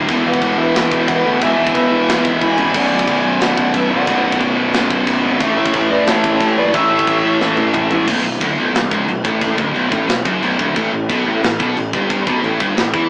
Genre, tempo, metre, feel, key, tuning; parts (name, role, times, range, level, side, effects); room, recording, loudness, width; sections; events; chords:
heavy metal; 180 BPM; 4/4; straight; B minor from 8.1 s; A4 = 440 Hz
scooped high-gain guitar; riff; 0.0-13.1 s; B1 to A3; -17 LUFS; equal; distortion
tight distorted guitar; riff; 0.0-8.1 s; B1 to A3; -20 LUFS; equal; distortion
fuzz picked electric bass; bass; 0.0-13.1 s; B0 to E2; -21 LUFS; equal; overdrive
tight metal drum kit; drums; 0.1-13.0 s; china cymbal, crash cymbal, kick drum, snare drum, toms; -20 LUFS; equal
high-gain lead guitar; melody; 0.3-7.9 s; C#5 to B5; -20 LUFS; equal; distortion
warm violin; second line; 0.3-7.9 s; A4 to G#5; -22 LUFS; equal
moderate studio reverb, RT60 0.6 s; rough rehearsal-room recording, small speaker sound; -13 LUFS; side -38 dB against mid
0.0-8.1 A section; 8.1-13.1 B section
drum fill 2.4-2.7, 7.4-8.1
0.1 E; 2.7 Bm; 5.4 A; 8.1 Bm; 10.8 A5